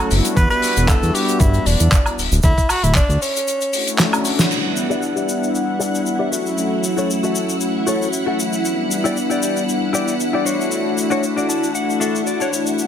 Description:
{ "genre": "nu-disco, nu disco", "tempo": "116 BPM", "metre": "4/4", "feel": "swing 55% on 16ths", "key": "E dorian", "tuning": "A4 = 437 Hz", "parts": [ { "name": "clear tenor saxophone", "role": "melody", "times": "0.0-4.0 s", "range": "C#4 to B4", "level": "-22 LUFS", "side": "equal", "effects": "ping-pong delay" }, { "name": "warm analog pad", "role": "accompaniment", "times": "0.0-12.9 s", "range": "F#3 to F#5", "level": "-21 LUFS", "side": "left 1 dB", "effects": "chorus, vintage 12-bit sampler grit, sidechain pumping, ping-pong delay" }, { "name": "damped 70s drum kit", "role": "drums", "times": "0.0-12.9 s", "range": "crash cymbal, handclaps, hi-hat, shaker, snare drum, woodblock", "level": "-22 LUFS", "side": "left 1 dB", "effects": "studio reverb" }, { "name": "fat analog bass", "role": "bass", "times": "0.1-3.2 s", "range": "D1 to G2", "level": "-16 LUFS", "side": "equal", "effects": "sidechain pumping" }, { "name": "egg shaker", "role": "percussion", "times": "0.2-4.5, 12.8-12.9 s", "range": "none", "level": "-30 LUFS", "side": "right 3 dB", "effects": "none" }, { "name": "electronic kick drum", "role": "drums", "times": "0.4-3.1 s", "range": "none", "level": "-16 LUFS", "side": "equal", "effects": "studio reverb" }, { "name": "string machine, full ensemble", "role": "sustained chords", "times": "4.5-12.9 s", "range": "E4 to F#5", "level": "-25 LUFS", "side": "right 1 dB", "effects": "ensemble chorus, sidechain pumping" }, { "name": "direct-recorded clean electric guitar", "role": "riff", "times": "4.9-12.7 s", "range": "D4 to A5", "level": "-23 LUFS", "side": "left 4 dB", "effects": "wide subtle chorus, low-pass filter, ping-pong delay" } ], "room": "moderate echo chamber reverb, RT60 1.8 s, small room ambience", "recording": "none", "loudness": "-16 LUFS", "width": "side -9 dB against mid", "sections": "0.0-4.5 A section; 4.5-12.9 B section", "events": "drum fill 4.0-4.5; band accent 4.4; filter sweep on clean electric guitar 4.5-12.9; clean electric guitar fill 11.2-12.8", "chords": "0.4 Em7; 2.2 Dmaj7; 4.5 Em7; 6.3 F#m7; 8.6 Em7; 10.5 Dmaj7", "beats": "| 0.37 0.89 1.40 1.92 | 2.44 2.96 3.47 3.99 | 4.51 5.03 5.54 6.06 | 6.58 7.09 7.61 8.13 | 8.65 9.16 9.68 10.20 | 10.71 11.23 11.75 12.27 | 12.78" }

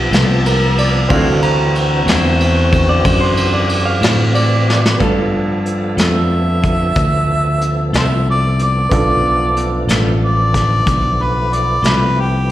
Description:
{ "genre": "slow blues", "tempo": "62 BPM (dotted quarters)", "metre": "12/8", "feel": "straight", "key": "G mixolydian", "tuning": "A4 = 440 Hz", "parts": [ { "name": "bright upright piano", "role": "accompaniment", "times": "0.0-12.5 s", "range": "A3 to A5", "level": "-24 LUFS", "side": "right 4 dB", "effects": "slapback echo" }, { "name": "tonewheel organ", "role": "sustained chords", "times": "0.0-12.5 s", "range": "E3 to A5", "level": "-24 LUFS", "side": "equal", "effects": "slow rotary speaker, overdrive, chorus vibrato" }, { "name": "warm saxophone section", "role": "sustained chords", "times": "0.0-5.0 s", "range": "E3 to E5", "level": "-22 LUFS", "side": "left 2 dB", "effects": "none" }, { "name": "fingered electric bass", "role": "bass", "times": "0.0-12.5 s", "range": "A1 to A2", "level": "-16 LUFS", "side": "equal", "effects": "none" }, { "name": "clean electric guitar", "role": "accompaniment", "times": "0.1-12.0 s", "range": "D3 to A4", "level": "-22 LUFS", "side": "left 4 dB", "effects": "tremolo, slapback echo" }, { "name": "vintage brush drum kit", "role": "drums", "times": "0.1-12.0 s", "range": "hi-hat, kick drum, ride cymbal, snare drum", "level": "-18 LUFS", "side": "equal", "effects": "none" }, { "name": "electric guitar through a small old amp", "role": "second line", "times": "0.5-5.0 s", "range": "Bb4 to Bb5", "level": "-21 LUFS", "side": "right 2 dB", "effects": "slapback echo" }, { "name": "warm harmonica", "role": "melody", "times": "6.0-12.5 s", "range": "G4 to E5", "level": "-17 LUFS", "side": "equal", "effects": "overdrive, slapback echo" } ], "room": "light reverb", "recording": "live gig heard through the venue's PA, recital hall reverb", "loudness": "-12 LUFS", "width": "side -13 dB against mid", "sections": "0.0-5.0 A section; 5.0-12.5 B section", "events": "clean electric guitar solo 0.0-5.0; drum fill 4.7-5.0", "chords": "0.0 G9; 1.1 D9; 5.0 G9", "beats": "0.12 | 1.10 2.07 3.05 4.02 | 5.00 5.97 6.95 7.93 | 8.90 9.88 10.86 11.83" }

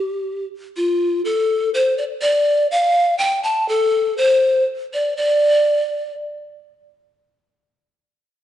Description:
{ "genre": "andean folk", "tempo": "81 BPM (dotted quarters)", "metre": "6/8", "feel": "straight", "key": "D minor", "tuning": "A4 = 441 Hz", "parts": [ { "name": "breathy mellow pan flute", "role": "solo", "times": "0.0-6.1 s", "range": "F4 to A5", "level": "-16 LUFS", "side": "left 1 dB", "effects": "none" } ], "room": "moderate recital hall reverb, RT60 1.6 s", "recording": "nothing above 10.5 kHz", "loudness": "-16 LUFS", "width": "side -11 dB against mid", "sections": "0.0-6.6 A section; 6.6-8.4 B section", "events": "none", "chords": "none", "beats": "0.01 | 0.75 1.48 | 2.22 2.96 | 3.69 4.43 | 5.17 5.91" }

